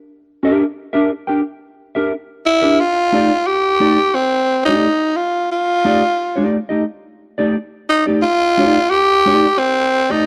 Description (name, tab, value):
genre	funk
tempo	88 BPM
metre	4/4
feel	straight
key	unclear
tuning	A4 = 440 Hz
part	mellow electric guitar	accompaniment	0.4-10.3 s	A3 to G5	-19 LUFS	equal	lush chorus
part	growling tenor saxophone	melody	2.5-10.3 s	C4 to G4	-16 LUFS	equal	none
room	moderate studio ambience, RT60 0.5 s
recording	none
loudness	-16 LUFS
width	mono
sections	0.0-2.8 A section; 2.8-10.3 B section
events	none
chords	0.0 Gm6/D; 2.8 F13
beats	| 0.08 0.76 1.43 2.11 | 2.79 3.46 4.14 4.82 | 5.50 6.18 6.86 7.54 | 8.22 8.91 9.59